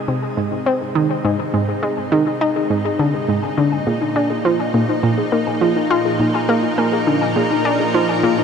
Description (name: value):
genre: ambient, sequencer-driven space music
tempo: 103 BPM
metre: 4/4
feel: straight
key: unclear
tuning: A4 = 436 Hz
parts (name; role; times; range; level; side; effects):
- lush unison pad; sustained chords; 0.0-8.4 s; Bb2 to C5; -22 LUFS; right 1 dB; chorus, shimmer reverb
- warbly dusty pluck; arpeggios; 0.0-8.4 s; Eb4 to Ab5; -24 LUFS; left 2 dB; chorus, auto-pan, ping-pong delay, shimmer reverb
- analog pluck; riff; 0.1-8.4 s; Ab2 to F4; -18 LUFS; equal; chorus, ping-pong delay, shimmer reverb
room: moderate huge ambient reverb, RT60 8.6 s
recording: dark, warm production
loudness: -16 LUFS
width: side -6 dB against mid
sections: 0.0-8.4 A section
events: fade-in on synth arpeggio sound 0.0-8.4; fade-in on analog synth pad 0.0-8.4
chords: 0.0 Ab; 3.6 Bbsus4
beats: 0.08 0.66 | 1.25 1.83 2.41 2.99 | 3.58 4.16 4.74 5.32 | 5.91 6.49 7.07 7.65 | 8.23